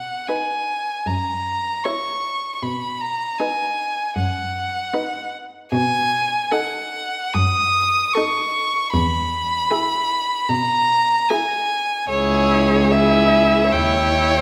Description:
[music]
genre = classical, slow romantic movement for string quartet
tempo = 76 BPM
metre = 4/4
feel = rubato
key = unclear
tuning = A4 = 440 Hz
[part]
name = warm violin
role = melody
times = 0.0-14.4 s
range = C#5 to D#6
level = -22 LUFS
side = equal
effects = none
[part]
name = rich cello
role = bass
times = 0.0-14.4 s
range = C#2 to B2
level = -24 LUFS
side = equal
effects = none
[part]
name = warm violin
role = second line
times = 0.3-14.4 s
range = G#4 to C#5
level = -27 LUFS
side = equal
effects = none
[part]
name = warm viola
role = accompaniment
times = 0.3-14.4 s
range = D#4 to E4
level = -28 LUFS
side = equal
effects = none
[sound]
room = moderate scoring stage reverb, RT60 1.7 s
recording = none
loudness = -20 LUFS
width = mono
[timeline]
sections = 0.0-14.4 A section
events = none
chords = 0.0 B; 1.1 F#7; 2.6 B; 8.9 E; 12.1 C#m; 13.7 D#7b9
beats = 0.29 1.08 1.85 | 2.64 3.40 4.17 4.94 | 5.72 6.51 7.34 8.14 | 8.93 9.71 10.50 11.30 | 12.11 12.91 13.73

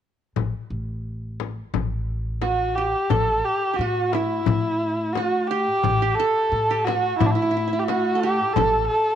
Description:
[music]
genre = Turkish makam ensemble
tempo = 88 BPM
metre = 4/4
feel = straight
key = unclear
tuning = A4 = 440 Hz
[part]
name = upright bass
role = bass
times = 0.4-8.9 s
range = A1 to A2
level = -28 LUFS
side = equal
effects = none
[part]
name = frame drum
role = percussion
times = 0.4-8.7 s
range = none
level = -26 LUFS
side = left 8 dB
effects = none
[part]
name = dark kamancheh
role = melody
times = 2.4-9.2 s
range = D4 to A4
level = -22 LUFS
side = equal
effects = none
[part]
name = qanun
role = second line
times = 2.4-9.2 s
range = E4 to A4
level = -27 LUFS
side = right 10 dB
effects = none
[sound]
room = light reverb, studio reverb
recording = 1960s-style stereo with parts hard left and right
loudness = -20 LUFS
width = side -10 dB against mid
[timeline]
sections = 0.4-3.1 A section; 3.1-9.2 B section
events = none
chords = none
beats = | 0.37 1.06 1.74 2.42 | 3.11 3.79 4.47 5.16 | 5.84 6.52 7.20 7.88 | 8.56

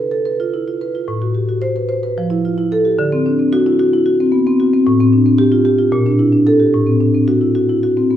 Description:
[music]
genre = classical, contemporary piece for solo marimba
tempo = 222 BPM (eighths)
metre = 7/8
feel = straight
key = A minor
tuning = A4 = 440 Hz
[part]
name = marimba with soft mallets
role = solo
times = 0.0-8.2 s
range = A2 to C5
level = -12 LUFS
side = equal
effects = none
[sound]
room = wet recital hall reverb, RT60 1.3 s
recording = recorded in a church or concert hall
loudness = -12 LUFS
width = side -11 dB against mid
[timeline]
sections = 0.0-8.2 A section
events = none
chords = 0.0 Dm6; 1.1 Am6; 2.2 Fmaj9; 3.0 D9; 4.9 Am7; 5.9 Bbmaj7; 6.7 Am6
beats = 0.26 0.54 0.82 | 1.09 1.37 1.64 1.91 2.18 2.45 2.72 | 2.99 3.26 3.53 3.80 4.06 4.33 4.59 | 4.85 5.12 5.38 5.64 5.91 6.18 6.45 | 6.72 7.00 7.27 7.55 7.83 8.10

